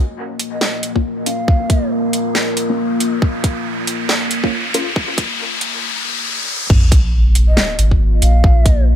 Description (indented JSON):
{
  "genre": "deep dubstep",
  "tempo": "138 BPM",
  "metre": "4/4",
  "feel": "swing 59% on 16ths, half-time",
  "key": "Bb minor",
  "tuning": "A4 = 439 Hz",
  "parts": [
    { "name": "deep dark ambient pad", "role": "sustained chords", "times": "0.0-9.0 s", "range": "Bb3 to Bb4", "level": "-22 LUFS", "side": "left 1 dB", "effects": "chorus, built-in reverb" },
    { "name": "riser and sub drop", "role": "sound effects", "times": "1.7-8.4 s", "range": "none", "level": "-22 LUFS", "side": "equal", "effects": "none" },
    { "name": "dubstep drum kit", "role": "drums", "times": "0.4-8.8 s", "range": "crash cymbal, hi-hat, snare drum", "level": "-19 LUFS", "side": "right 1 dB", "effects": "high-pass filter on hats, studio reverb, high-pass filter on snare, high-pass filter on cymbals" },
    { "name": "breathy mellow ney", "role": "melody", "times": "0.5-1.9, 7.5-8.8 s", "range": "Eb5 to F5", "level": "-26 LUFS", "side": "right 1 dB", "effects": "dub echo" },
    { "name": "filtered dub chord stab", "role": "stabs", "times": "1.0-4.9 s", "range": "Bb3 to F4", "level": "-25 LUFS", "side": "left 2 dB", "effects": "phaser, vintage 12-bit sampler grit, dub echo" },
    { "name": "electronic kick drum", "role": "drums", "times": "1.0-8.8 s", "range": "none", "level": "-13 LUFS", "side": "equal", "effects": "studio reverb" },
    { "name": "soft dub sub bass", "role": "bass", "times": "6.7-9.0 s", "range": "Ab1 to Bb1", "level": "-12 LUFS", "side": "equal", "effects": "none" }
  ],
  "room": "little or no reverb",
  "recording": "echo-heavy mix, high-pass filter",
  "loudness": "-14 LUFS",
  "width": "side -10 dB against mid",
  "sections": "0.0-6.7 A section; 6.7-9.0 B section",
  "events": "build-up 0.0-6.7; filter sweep 0.0-6.7; riser 1.7-6.7; drop 6.7-9.0; impact 6.7-8.4",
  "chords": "0.0 Bbm; 6.7 Bb5"
}